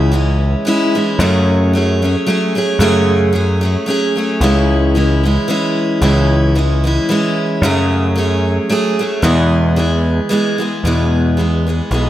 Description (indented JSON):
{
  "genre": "celtic folk, Celtic waltz",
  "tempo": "112 BPM",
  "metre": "3/4",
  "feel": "swing 54% on 8ths",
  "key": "E major",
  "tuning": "A4 = 438 Hz",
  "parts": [
    { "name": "picked steel-string acoustic guitar", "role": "accompaniment", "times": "0.0-12.1 s", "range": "E2 to G#4", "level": "-14 LUFS", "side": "equal", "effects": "none" },
    { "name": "growling picked electric bass", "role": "bass", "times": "0.0-12.1 s", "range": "B1 to F#2", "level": "-14 LUFS", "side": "equal", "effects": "overdrive" }
  ],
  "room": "moderate lush hall reverb, RT60 2.2 s",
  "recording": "dreamy mix soaked in reverb",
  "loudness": "-12 LUFS",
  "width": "side -13 dB against mid",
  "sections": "0.0-10.8 A section; 10.8-12.1 B section",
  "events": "none",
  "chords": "0.0 C#m; 1.2 F#madd9; 4.4 C#m; 7.6 F#madd9; 9.2 E"
}